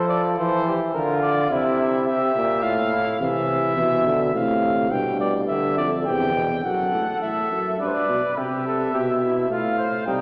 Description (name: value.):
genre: classical, imitative canzona for brass ensemble.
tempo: 105 BPM.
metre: 3/4.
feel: straight.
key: F major.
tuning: A4 = 440 Hz.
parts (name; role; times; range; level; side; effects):
warm cornet; melody; 0.0-10.2 s; Bb4 to G5; -26 LUFS; equal; none.
warm trumpet; second line; 0.0-3.2, 6.6-10.2 s; Eb4 to C5; -30 LUFS; equal; none.
mellow trombone; accompaniment; 0.0-6.5, 10.1-10.2 s; A2 to G3; -27 LUFS; equal; none.
warm tuba; bass; 3.2-10.2 s; E2 to C3; -27 LUFS; equal; none.
room: wet church reverb, RT60 2.7 s.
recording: heard from further back in the room, small speaker sound.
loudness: -22 LUFS.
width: mono.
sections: 0.0-6.7 A section; 6.7-10.2 B section.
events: none.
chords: 0.0 F; 0.9 Bb/D; 1.5 C; 2.6 F/A; 3.2 C; 4.3 F/A; 4.9 G; 6.1 C/E; 6.7 Gbm7; 7.8 G; 8.4 C; 9.5 F/A.